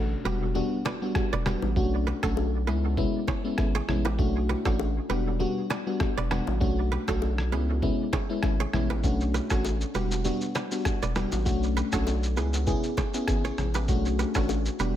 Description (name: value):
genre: afrobeats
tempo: 99 BPM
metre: 4/4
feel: swing 55% on 16ths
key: B minor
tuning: A4 = 440 Hz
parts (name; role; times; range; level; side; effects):
- saturated sub bass; bass; 0.0-15.0 s; E1 to C#2; -28 LUFS; equal; none
- impact; sound effects; 0.0-1.8 s; none; -44 LUFS; equal; none
- FM electric piano with soft pad layer; accompaniment; 0.2-15.0 s; G3 to G#4; -29 LUFS; left 1 dB; chorus, dub echo
- kora; riff; 0.3-14.9 s; F#4 to D5; -35 LUFS; right 6 dB; dub echo
- congas and bongos; percussion; 0.6-14.6 s; none; -37 LUFS; left 5 dB; dub echo
- lo-fi sampler-style drum kit; drums; 0.9-14.9 s; kick drum, rim click, shaker; -30 LUFS; equal; none
room: little or no reverb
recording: echo-heavy mix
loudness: -24 LUFS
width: side -11 dB against mid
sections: 0.0-15.0 A section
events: break 0.0-9.0; impact 0.0-1.8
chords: 0.2 Em7; 1.8 Bm7; 2.7 C#m7; 4.2 Bm7; 5.1 Em7; 6.6 Bm7; 7.5 C#m7; 9.0 Bm7; 9.9 Em7; 11.5 Bm7; 12.4 C#m7; 13.9 Bm7